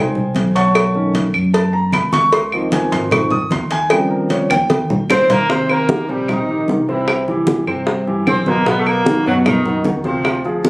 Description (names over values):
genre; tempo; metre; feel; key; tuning
Afro-Cuban jazz; 152 BPM; 4/4; straight; unclear; A4 = 442 Hz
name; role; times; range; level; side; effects
warm concert grand piano; accompaniment; 0.0-10.7 s; Cb3 to Eb6; -17 LUFS; equal; none
upright bass; bass; 0.0-10.7 s; Ab1 to G2; -22 LUFS; equal; none
congas; percussion; 0.2-10.7 s; none; -21 LUFS; equal; none
cowbell and bongos; percussion; 0.4-10.7 s; none; -20 LUFS; left 1 dB; none
claves; percussion; 0.8-10.4 s; none; -22 LUFS; right 1 dB; none
breathy trumpet; melody; 5.1-10.4 s; D#4 to C5; -20 LUFS; equal; none
clear tenor saxophone; second line; 5.1-10.4 s; Eb3 to C4; -21 LUFS; equal; none
room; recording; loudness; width
moderate club reverb, RT60 0.8 s; recorded on a phone in the room, studio ambience; -13 LUFS; side -24 dB against mid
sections
0.0-5.5 A section; 5.5-10.7 B section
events
grand piano solo 0.0-5.5; drum fill 4.5-5.5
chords
0.0 Fm9 (rootless); 0.8 B9; 2.3 Dbmaj13; 3.9 Eb13; 5.5 Eb6; 7.1 C; 8.7 Bmaj7